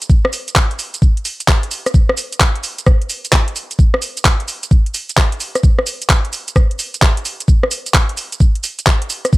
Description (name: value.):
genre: UK garage.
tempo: 130 BPM.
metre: 4/4.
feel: swing 65% on 16ths.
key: none.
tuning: none.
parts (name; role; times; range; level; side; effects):
garage drum kit; drums; 0.0-9.4 s; handclaps, hi-hat, rim click, shaker; -17 LUFS; equal; none.
electronic kick drum; drums; 0.1-9.4 s; none; -12 LUFS; equal; none.
room: little or no reverb.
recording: none.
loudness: -13 LUFS.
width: side -20 dB against mid.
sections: 0.0-9.4 A section.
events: none.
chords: none.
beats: | 0.10 0.56 1.02 1.48 | 1.94 2.40 2.87 3.33 | 3.79 4.25 4.71 5.17 | 5.64 6.10 6.56 7.02 | 7.48 7.94 8.40 8.87 | 9.33.